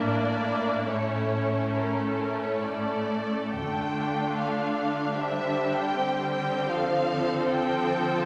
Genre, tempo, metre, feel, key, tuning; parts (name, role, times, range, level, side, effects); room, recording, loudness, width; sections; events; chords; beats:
classical, slow romantic movement for string orchestra; 60-84 BPM; 4/4; rubato; A4 = 440 Hz
warm symphonic violin section; melody; 0.0-8.3 s; A4 to G5; -34 LUFS; equal
rich symphonic violin section; second line; 0.0-8.3 s; E4 to C5; -34 LUFS; equal
rich studio viola section; accompaniment; 0.0-8.3 s; F3 to D4; -31 LUFS; equal
clear symphonic double bass section; bass; 0.0-4.3 s; A1 to D2; -40 LUFS; equal
rich symphonic cello section; bass; 0.0-8.3 s; A2 to D3; -36 LUFS; equal
wet scoring stage reverb, RT60 1.6 s; -27 LUFS; mono
0.0-8.3 A section
0.0 A; 3.6 Dm; 5.2 C5/D; 6.7 F/D
| 0.03 0.90 1.77 2.63 | 3.57 4.39 5.16 5.93 | 6.70 7.48 8.23